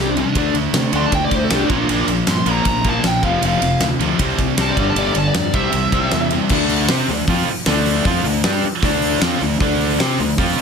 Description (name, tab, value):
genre	hard rock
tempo	156 BPM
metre	4/4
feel	straight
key	D minor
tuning	A4 = 440 Hz
part	smooth overdriven lead guitar	melody	0.0-6.3 s	D4 to C6	-22 LUFS	equal	tape echo
part	crunchy overdriven guitar	riff	0.0-10.6 s	F2 to C5	-22 LUFS	left 10 dB	none
part	scooped high-gain guitar	riff	0.0-10.6 s	F2 to C5	-22 LUFS	right 10 dB	distortion
part	fuzz fingered electric bass	bass	0.0-10.6 s	F1 to C3	-23 LUFS	equal	overdrive
part	huge arena drum kit	drums	0.2-10.6 s	crash cymbal, hi-hat, kick drum, ride cymbal, snare drum	-20 LUFS	equal	none
part	overdriven electric guitar	riff	0.4-10.6 s	F2 to C5	-24 LUFS	right 1 dB	none
room	light reverb, small room ambience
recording	none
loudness	-15 LUFS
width	side -6 dB against mid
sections	0.0-6.5 A section; 6.5-10.6 B section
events	lead electric guitar solo 0.0-6.5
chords	0.4 D5; 1.7 Bb; 3.2 F5; 4.2 C5; 4.8 G5; 5.5 C; 6.5 Dm